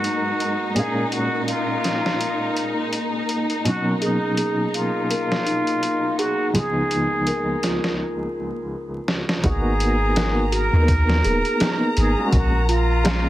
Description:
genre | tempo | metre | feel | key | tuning
trip hop | 83 BPM | 4/4 | swing 57% on 16ths | G# dorian | A4 = 439 Hz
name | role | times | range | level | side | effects
trumpet with plunger mute | melody | 0.0-13.3 s | D#4 to A#4 | -25 LUFS | equal | tape echo
felt-muted upright piano | accompaniment | 0.0-13.3 s | C#2 to E#5 | -25 LUFS | equal | tremolo
muted symphonic violin section | sustained chords | 0.0-13.3 s | D#4 to A#5 | -29 LUFS | left 1 dB | none
trip hop sampler-style drum kit | drums | 0.0-13.2 s | hi-hat, kick drum, snare drum | -24 LUFS | equal | high-pass filter on hats, small room ambience, high-pass filter on kick, high-pass filter on snare
wind-like tuned noise texture | texture | 0.0-8.0 s | A#3 to A#4 | -32 LUFS | left 2 dB | built-in reverb
celesta | arpeggios | 4.0-13.3 s | D#4 to A#4 | -27 LUFS | right 1 dB | vintage 12-bit sampler grit, tape echo
soft 808-style bass | bass | 9.4-13.3 s | D#1 to D#2 | -20 LUFS | equal | none
room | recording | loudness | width
light reverb, small room reverb | dense, heavily limited modern master, vinyl crackle | -19 LUFS | side -14 dB against mid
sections
0.0-9.4 A section; 9.4-13.3 B section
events
break 8.0-9.4; drum fill 9.1-9.4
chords
0.0 G#m7; 0.8 F#maj13/A# (rootless); 3.7 Bmaj7; 6.5 C#7; 9.4 G#m7; 12.3 F#maj7

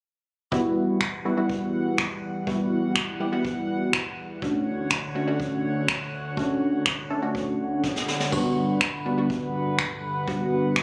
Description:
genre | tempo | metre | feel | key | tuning
dance-pop | 123 BPM | 4/4 | straight | E dorian | A4 = 440 Hz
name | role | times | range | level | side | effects
funky polysynth comp | accompaniment | 0.5-10.8 s | G3 to A4 | -28 LUFS | equal | chorus
chorused pulse-width pad | sustained chords | 0.5-10.8 s | D2 to F#5 | -33 LUFS | equal | sidechain pumping
jazz brush drum kit | drums | 0.5-10.8 s | crash cymbal, finger snaps, kick drum, snare drum | -31 LUFS | equal | none
room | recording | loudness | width
light reverb, studio reverb | recorded on a phone in the room, club reverb, compression | -26 LUFS | mono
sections
0.5-10.8 A section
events
drum fill 7.8-8.3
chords
0.5 Emadd9; 4.4 Dmaj7; 8.3 Gmaj7

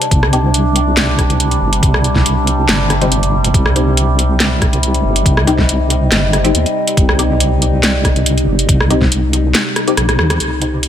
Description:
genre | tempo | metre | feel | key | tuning
deep dubstep | 140 BPM | 4/4 | half-time | C minor | A4 = 439 Hz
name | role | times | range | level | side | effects
overtone-sweeping drone | sustained chords | 0.0-10.9 s | C3 to Eb4 | -18 LUFS | equal | chorus, built-in reverb
garage drum kit | drums | 0.0-10.9 s | hi-hat, rim click, snare drum | -16 LUFS | equal | none
deep soft wobble bass | bass | 0.1-10.9 s | G1 to Eb2 | -15 LUFS | equal | chorus
electronic kick drum | drums | 0.1-9.1 s | none | -15 LUFS | equal | none
filtered dub chord stab | stabs | 0.3-10.8 s | C4 to G4 | -20 LUFS | left 3 dB | phaser, lush chorus, dub echo
room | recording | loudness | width
light reverb, digital ambience | none | -11 LUFS | side -10 dB against mid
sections
0.0-10.4 A section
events
drum fill 9.8-10.4; kick drops out 10.0-10.4; band accent 10.3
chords
0.0 Cm

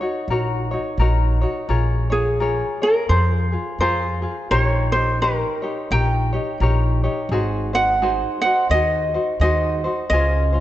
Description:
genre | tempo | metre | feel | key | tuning
Hawaiian | 86 BPM | 4/4 | swing 59% on 8ths | unclear | A4 = 440 Hz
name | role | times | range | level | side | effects
ukulele | melody | 0.0-10.6 s | Ab4 to G5 | -20 LUFS | right 1 dB | none
tenor ukulele | accompaniment | 0.0-10.6 s | Db4 to Db5 | -24 LUFS | left 2 dB | none
upright bass | bass | 0.3-10.6 s | Ab1 to F2 | -20 LUFS | equal | none
room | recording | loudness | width
moderate concert hall reverb, RT60 1.9 s | nothing above 8.0 kHz | -18 LUFS | side -13 dB against mid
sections
0.0-10.6 A section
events
none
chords
0.0 Ebm7; 1.7 Bbm7; 4.5 Eb7/Bb; 7.3 Ab7

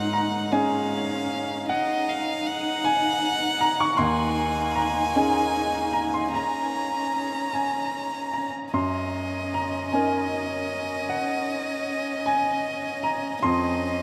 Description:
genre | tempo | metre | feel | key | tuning
neoclassical piano and strings | 51 BPM (dotted quarters) | 6/8 | rubato | unclear | A4 = 441 Hz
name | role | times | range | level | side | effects
rich violin | melody | 0.0-14.0 s | Eb5 to Bb5 | -30 LUFS | equal | none
dark cello | second line | 0.0-14.0 s | Db4 to Eb4 | -34 LUFS | equal | none
clear upright piano | accompaniment | 0.0-14.0 s | Eb2 to Db6 | -28 LUFS | equal | none
room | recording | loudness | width
wet huge ambient reverb, RT60 8.3 s | in a vast, echoing space | -25 LUFS | mono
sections
0.0-14.0 A section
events
none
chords
0.0 Ab7sus4; 4.0 Eb7sus4; 8.7 Gb6; 13.4 Dbadd9/F

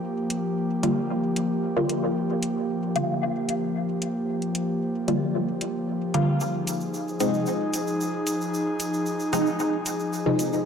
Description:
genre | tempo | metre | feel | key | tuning
dub techno | 113 BPM | 4/4 | straight | G phrygian | A4 = 439 Hz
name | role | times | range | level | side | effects
airy breathy pad | sustained chords | 0.0-10.7 s | F3 to Ab4 | -26 LUFS | equal | chorus
electronic hi-hat | drums | 0.3-10.5 s | none | -32 LUFS | left 1 dB | none
filtered dub chord stab | stabs | 0.8-10.5 s | C3 to F4 | -26 LUFS | equal | phaser, dub echo
egg shaker | percussion | 6.4-10.6 s | none | -36 LUFS | right 2 dB | none
room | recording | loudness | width
wet lush hall reverb, RT60 1.7 s, digital ambience | none | -24 LUFS | side -7 dB against mid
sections
0.0-10.7 A section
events
filter sweep on analog synth pad 0.0-10.7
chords
0.0 Gm7; 6.4 Fm7

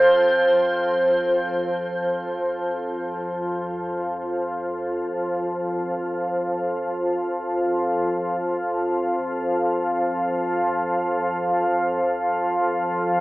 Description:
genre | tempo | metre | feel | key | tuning
ambient | free time | none | none | unclear | A4 = 441 Hz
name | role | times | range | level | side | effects
organ-like drone | drone | 0.0-13.2 s | F2 to F3 | -22 LUFS | equal | ensemble chorus, built-in reverb
room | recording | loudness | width
wet huge ambient reverb, RT60 8.6 s | telephone sound | -21 LUFS | side -20 dB against mid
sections
0.3-13.2 A section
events
filter sweep on synth drone 0.3-13.2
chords
none

